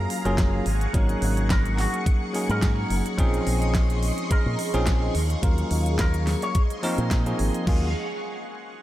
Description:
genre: nu-disco, nu disco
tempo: 107 BPM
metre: 4/4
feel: swing 54% on 16ths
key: Eb dorian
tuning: A4 = 441 Hz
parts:
  - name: electric guitar with an envelope filter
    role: melody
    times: 0.0-6.6 s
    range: Gb4 to Db5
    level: -34 LUFS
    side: equal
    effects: analog delay
  - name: bell-like tine electric piano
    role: accompaniment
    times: 0.0-7.9 s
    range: F3 to Bb4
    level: -28 LUFS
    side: equal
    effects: sidechain pumping, analog delay
  - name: string machine, full ensemble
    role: sustained chords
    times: 0.0-7.9 s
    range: Ab4 to Db6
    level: -32 LUFS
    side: equal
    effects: phaser, ensemble chorus, vintage 12-bit sampler grit, sidechain pumping
  - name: fingered electric bass with an envelope filter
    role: bass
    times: 0.0-7.9 s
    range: Gb1 to Bb2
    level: -25 LUFS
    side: equal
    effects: sidechain pumping
  - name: pop drum kit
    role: drums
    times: 0.1-7.8 s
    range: crash cymbal, hi-hat, snare drum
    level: -33 LUFS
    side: equal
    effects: none
  - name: electronic kick drum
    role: drums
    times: 0.4-7.8 s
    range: none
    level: -22 LUFS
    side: equal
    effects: none
room: light reverb, digital ambience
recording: none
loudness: -21 LUFS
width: side -14 dB against mid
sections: 0.0-7.7 A section; 7.7-8.8 B section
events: drop 0.0-7.7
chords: 0.0 Gbmaj9; 0.7 Ab7sus4; 3.2 Bbm11; 5.1 Ebm11; 6.6 Bb9sus4; 7.7 Ebm11

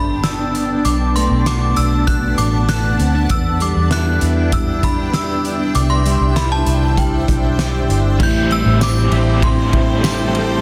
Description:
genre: dream pop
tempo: 98 BPM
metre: 4/4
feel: straight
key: unclear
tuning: A4 = 440 Hz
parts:
  - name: synth chime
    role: melody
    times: 0.0-10.3 s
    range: G5 to G6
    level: -25 LUFS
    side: equal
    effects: ensemble chorus, delay
  - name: granular cloud pad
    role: sustained chords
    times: 0.0-10.6 s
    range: B3 to A5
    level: -26 LUFS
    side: equal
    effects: built-in reverb
  - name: mellow electric guitar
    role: arpeggios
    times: 0.0-10.6 s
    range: E2 to A4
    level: -24 LUFS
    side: equal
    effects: analog chorus, delay
  - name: vintage muted fingered electric bass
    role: bass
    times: 0.0-10.6 s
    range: G1 to E2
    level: -20 LUFS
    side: equal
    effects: none
  - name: loose indie drum kit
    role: drums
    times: 0.2-10.5 s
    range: crash cymbal, hi-hat, kick drum, ride cymbal, snare drum, tambourine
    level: -23 LUFS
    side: equal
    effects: none
  - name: vibraphone with hard mallets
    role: texture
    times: 3.6-10.6 s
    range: D4 to E5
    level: -34 LUFS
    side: equal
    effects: none
  - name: raw garage guitar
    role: accompaniment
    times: 8.2-10.6 s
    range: A2 to E4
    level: -25 LUFS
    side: equal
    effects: overdrive, tremolo, lush chorus
room: moderate lush hall reverb, RT60 2.5 s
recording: dense, heavily limited modern master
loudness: -16 LUFS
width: mono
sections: 0.0-8.2 A section; 8.2-10.6 B section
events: none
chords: 0.0 Gadd9; 0.9 Bm7; 3.3 Em7; 5.8 Cadd9; 8.2 Am7

